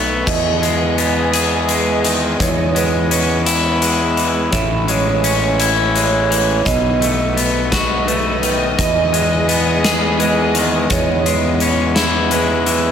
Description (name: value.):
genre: post-rock.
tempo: 56 BPM (dotted quarters).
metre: 6/8.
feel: straight.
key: E major.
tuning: A4 = 441 Hz.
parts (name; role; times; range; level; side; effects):
dark studio string section; sustained chords; 0.0-12.9 s; E3 to D#5; -23 LUFS; equal; none.
electric guitar at the edge of break-up; arpeggios; 0.0-12.9 s; E2 to G#4; -18 LUFS; left 4 dB; tape echo, slapback echo.
vibraphone with medium hard mallets; arpeggios; 0.0-12.9 s; B4 to E5; -22 LUFS; right 6 dB; tape echo, slapback echo.
fuzz fingered electric bass; bass; 0.0-12.9 s; A1 to E2; -20 LUFS; right 1 dB; overdrive.
huge arena drum kit; drums; 0.3-12.8 s; crash cymbal, hi-hat, kick drum, snare drum; -20 LUFS; left 1 dB; none.
room: moderate concert hall reverb, RT60 2.2 s.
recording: big arena sound.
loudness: -13 LUFS.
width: side -8 dB against mid.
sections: 0.3-12.9 A section.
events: none.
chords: 0.3 Emaj7; 2.4 C#m7/E; 4.5 Amaj7; 6.7 B7; 8.8 Emaj7; 10.9 C#m7/E.